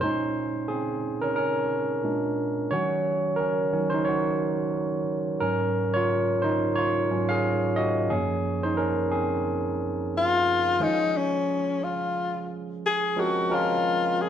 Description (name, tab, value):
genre	R&B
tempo	89 BPM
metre	4/4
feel	swing 59% on 16ths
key	unclear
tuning	A4 = 445 Hz
part	barky tine electric piano	accompaniment	0.0-14.3 s	Gb2 to F5	-24 LUFS	right 1 dB	overdrive
part	breathy tenor saxophone	melody	10.2-14.3 s	Db4 to Ab4	-23 LUFS	left 4 dB	none
room	wet stone room reverb, RT60 1.2 s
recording	band playing live in one room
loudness	-23 LUFS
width	side -9 dB against mid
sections	0.0-10.8 A section; 10.8-14.3 B section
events	tine electric piano solo 0.0-10.8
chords	0.0 Bbm11; 2.0 Bb7; 2.7 Ebm7; 5.4 Ab7sus4; 8.1 Gbmaj9; 10.8 Dbmaj7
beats	| 0.01 0.69 1.36 2.04 | 2.71 3.38 4.06 4.73 | 5.41 6.08 6.75 7.43 | 8.10 8.78 9.45 10.12 | 10.80 11.47 12.15 12.82 | 13.50 14.17